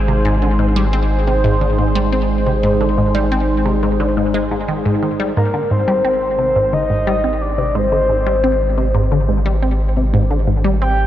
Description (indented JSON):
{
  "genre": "ambient, sequencer-driven space music",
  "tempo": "88 BPM",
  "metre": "4/4",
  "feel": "straight",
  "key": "Ab major",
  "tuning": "A4 = 440 Hz",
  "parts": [
    { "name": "phased analog pad", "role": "sustained chords", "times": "0.0-11.1 s", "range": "Eb3 to C5", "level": "-21 LUFS", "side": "equal", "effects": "phaser, chorus" },
    { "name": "round analog bass", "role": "bass", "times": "0.0-11.1 s", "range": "Ab1", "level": "-19 LUFS", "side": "equal", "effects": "none" },
    { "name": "resonant blip pluck", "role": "riff", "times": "0.1-10.9 s", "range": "Ab2 to C4", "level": "-19 LUFS", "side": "equal", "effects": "phaser, analog delay" },
    { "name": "soft octave-layered synth lead", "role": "melody", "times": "5.4-11.1 s", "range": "Bb4 to G5", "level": "-20 LUFS", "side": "left 1 dB", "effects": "chorus, analog delay" }
  ],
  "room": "moderate huge ambient reverb, RT60 8.2 s",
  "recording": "dark, warm production, nothing above 10.5 kHz",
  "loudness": "-14 LUFS",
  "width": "side -12 dB against mid",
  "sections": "0.0-5.4 A section; 5.4-11.1 B section",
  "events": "fade-in on analog synth pad 5.4-11.1",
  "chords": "0.0 Ab; 5.4 Abmaj7",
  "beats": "0.59 1.27 1.96 | 2.64 3.32 4.00 4.68 | 5.37 6.05 6.73 7.41 | 8.09 8.78 9.46 10.14 | 10.82"
}